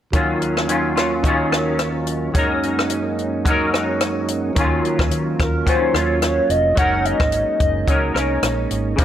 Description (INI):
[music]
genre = indie pop, bedroom pop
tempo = 108 BPM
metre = 4/4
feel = swing 55% on 16ths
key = unclear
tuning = A4 = 440 Hz
[part]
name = percussive tonewheel organ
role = accompaniment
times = 0.1-9.0 s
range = Eb2 to F4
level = -24 LUFS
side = right 4 dB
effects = slow rotary speaker, cassette tape
[part]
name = semi-hollow electric guitar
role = accompaniment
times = 0.1-9.0 s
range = Db3 to Bb4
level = -21 LUFS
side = left 2 dB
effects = ensemble chorus, vibrato effect
[part]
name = compact cocktail drum kit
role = drums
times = 0.1-9.0 s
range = hi-hat, kick drum, rim click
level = -21 LUFS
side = equal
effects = none
[part]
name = vintage muted fingered electric bass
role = bass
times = 4.6-9.0 s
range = F1 to Eb3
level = -24 LUFS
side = equal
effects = none
[part]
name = warbly nostalgic lead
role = melody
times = 5.4-8.7 s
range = Bb4 to Gb5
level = -20 LUFS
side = equal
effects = lush chorus
[sound]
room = light reverb, studio reverb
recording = none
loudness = -16 LUFS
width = side -10 dB against mid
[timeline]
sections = 0.1-4.6 A section; 4.6-9.0 B section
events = none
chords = 0.1 Ebm9; 2.4 Gb6; 4.6 Ebm9; 6.8 Gb6